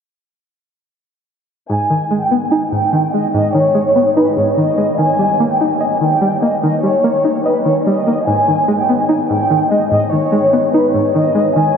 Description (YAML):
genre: hip hop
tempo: 146 BPM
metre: 4/4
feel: half-time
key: G# harmonic minor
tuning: A4 = 440 Hz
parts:
  - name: warm studio violin section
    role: melody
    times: 1.7-11.8 s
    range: B4 to G#5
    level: -15 LUFS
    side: equal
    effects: low-pass filter, ping-pong delay
  - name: string-like resonator pluck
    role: accompaniment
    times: 1.7-11.8 s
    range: G#2 to D#5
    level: -15 LUFS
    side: equal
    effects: chorus, low-pass filter
room: wet huge ambient reverb, RT60 8.9 s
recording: dreamy mix soaked in reverb, low-pass filter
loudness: -12 LUFS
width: side -7 dB against mid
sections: 1.7-11.8 A section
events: none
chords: 1.7 G#m; 5.0 D#; 8.3 G#m